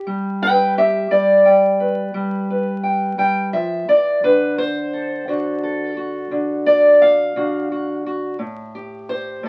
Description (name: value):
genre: acoustic country blues, solo or duo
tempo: 58 BPM (dotted quarters)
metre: 12/8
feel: straight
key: D mixolydian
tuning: A4 = 440 Hz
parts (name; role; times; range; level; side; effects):
- fingerpicked steel-string acoustic guitar; solo; 0.0-9.5 s; A2 to G5; -18 LUFS; equal; none
room: light reverb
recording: very old 78 rpm record, vinyl crackle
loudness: -18 LUFS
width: mono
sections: 0.0-9.5 A section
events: steel-string acoustic guitar solo 0.0-9.5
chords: 0.0 G; 4.2 D7; 8.4 A7(no3)